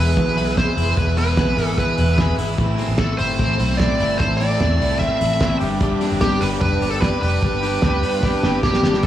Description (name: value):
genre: jangly indie pop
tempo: 149 BPM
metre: 4/4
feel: straight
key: unclear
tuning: A4 = 440 Hz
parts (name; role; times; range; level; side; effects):
- smooth overdriven lead guitar; melody; 0.0-9.1 s; G4 to E5; -22 LUFS; right 1 dB; analog delay
- overdriven electric guitar; accompaniment; 0.0-9.1 s; E2 to G4; -27 LUFS; right 4 dB; analog delay
- phased string machine; sustained chords; 0.0-9.0 s; G4 to E6; -32 LUFS; equal; ensemble chorus, phaser
- twelve-string electric guitar; arpeggios; 0.0-9.1 s; E2 to G4; -24 LUFS; left 5 dB; analog delay
- vintage muted fingered electric bass; bass; 0.0-9.1 s; E1 to G2; -22 LUFS; equal; none
- cloth-damped thuddy drum kit; drums; 0.2-9.1 s; hi-hat, kick drum, snare drum; -22 LUFS; right 1 dB; analog delay
- clear trumpet; second line; 2.2-2.9, 5.4-9.0 s; D4 to G#4; -33 LUFS; left 3 dB; analog delay
room: small room ambience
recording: echo-heavy mix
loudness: -16 LUFS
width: side -12 dB against mid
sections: 0.0-9.0 A section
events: drum fill 8.2-9.0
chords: 0.0 E; 2.6 Am; 5.6 G